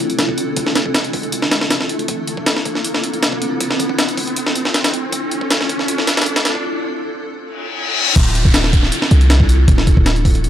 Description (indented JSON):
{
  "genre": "drum and bass, jungle",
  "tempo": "158 BPM",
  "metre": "4/4",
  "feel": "straight",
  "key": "D minor",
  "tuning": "A4 = 443 Hz",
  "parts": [
    { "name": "breakbeat sampler-style drum kit", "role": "drums", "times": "0.0-10.5 s", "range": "crash cymbal, hi-hat, kick drum, snare drum", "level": "-16 LUFS", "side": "equal", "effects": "high-pass filter on kick, studio reverb, high-pass filter on hats, high-pass filter on snare, high-pass filter on cymbals" },
    { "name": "riser, reverse cymbal and downlifter", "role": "sound effects", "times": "0.0-10.5 s", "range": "none", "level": "-23 LUFS", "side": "left 1 dB", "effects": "none" },
    { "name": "warm 808-style bass", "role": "bass", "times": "8.2-10.5 s", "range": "D1 to C2", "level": "-13 LUFS", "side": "equal", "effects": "none" }
  ],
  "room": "little or no reverb",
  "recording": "dry, gritty hardware recording, high-pass filter",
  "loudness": "-14 LUFS",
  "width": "side -11 dB against mid",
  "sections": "0.0-8.2 A section; 8.2-10.5 B section",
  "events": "build-up 0.0-8.2; riser 0.0-6.6; filter sweep 0.0-8.2; break 6.6-8.2; reverse cymbal 7.6-8.2; drop 8.2-10.5",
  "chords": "none"
}